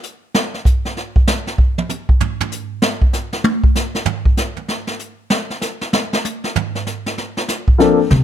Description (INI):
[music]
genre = jazz piano trio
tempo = 193 BPM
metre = 4/4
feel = swing 63% on 8ths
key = unclear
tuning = A4 = 440 Hz
[part]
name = jazz brush drum kit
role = drums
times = 0.0-8.2 s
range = brushed snare drum, hi-hat, kick drum, snare drum, toms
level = -16 LUFS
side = right 1 dB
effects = none
[part]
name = warm upright piano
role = melody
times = 7.8-8.0 s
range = F3 to A4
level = -12 LUFS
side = left 5 dB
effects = none
[part]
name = upright bass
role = bass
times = 8.1-8.2 s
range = C3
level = -11 LUFS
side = left 1 dB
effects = none
[sound]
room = little or no reverb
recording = close, detailed microphones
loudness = -16 LUFS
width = side -10 dB against mid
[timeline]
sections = 0.0-7.8 A section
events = drum solo 0.0-7.8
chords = none